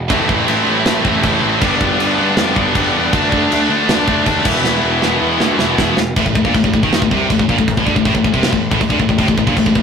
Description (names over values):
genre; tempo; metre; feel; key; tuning
heavy metal; 158 BPM; 4/4; straight; A minor; A4 = 440 Hz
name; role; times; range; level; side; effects
fuzz picked electric bass; bass; 0.0-9.8 s; E1 to G2; -22 LUFS; right 1 dB; overdrive
heavy high-gain guitar; riff; 0.1-9.8 s; E2 to D4; -19 LUFS; right 10 dB; distortion
tight distorted guitar; riff; 0.1-9.8 s; A2 to E4; -17 LUFS; left 7 dB; distortion
tight distorted guitar; riff; 0.1-6.0 s; E2 to D4; -20 LUFS; right 1 dB; distortion
tight metal drum kit; drums; 0.1-9.8 s; china cymbal, crash cymbal, kick drum, snare drum; -18 LUFS; right 1 dB; none
room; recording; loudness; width
light reverb; rough rehearsal-room recording, tube saturation; -12 LUFS; side -6 dB against mid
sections
0.0-6.2 A section; 6.2-9.8 B section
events
drum fill 4.7-6.2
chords
0.1 Am; 1.6 G; 3.1 D5; 4.5 E5; 6.2 Am